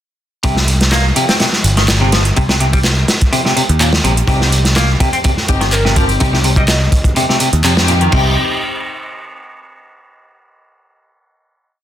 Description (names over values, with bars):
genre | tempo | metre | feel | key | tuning
breakbeat, breaks | 125 BPM | 4/4 | straight | C minor | A4 = 440 Hz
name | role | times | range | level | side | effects
semi-hollow electric guitar | riff | 0.4-8.3 s | Bb2 to C4 | -18 LUFS | left 1 dB | tape echo
picked electric bass | bass | 0.4-8.3 s | G1 to F2 | -14 LUFS | equal | none
crunchy breakbeat drum kit | drums | 0.4-8.2 s | crash cymbal, hi-hat, kick drum, snare drum | -15 LUFS | equal | none
garage drum kit | drums | 0.4-8.1 s | handclaps, hi-hat | -21 LUFS | right 2 dB | overdrive
muted studio string section | stabs | 4.3-8.3 s | C4 to G4 | -21 LUFS | left 4 dB | tape echo
glassy wavetable pluck | melody | 5.7-6.8 s | Bb4 to Eb5 | -24 LUFS | equal | chorus, old record sound, tape echo
room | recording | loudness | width
light reverb, studio ambience | dense, heavily limited modern master | -11 LUFS | side -11 dB against mid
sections
0.4-8.1 drop; 8.1-10.0 final chord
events
drop 0.4-8.1; band accent 7.6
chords
0.4 Cm; 8.1 N.C.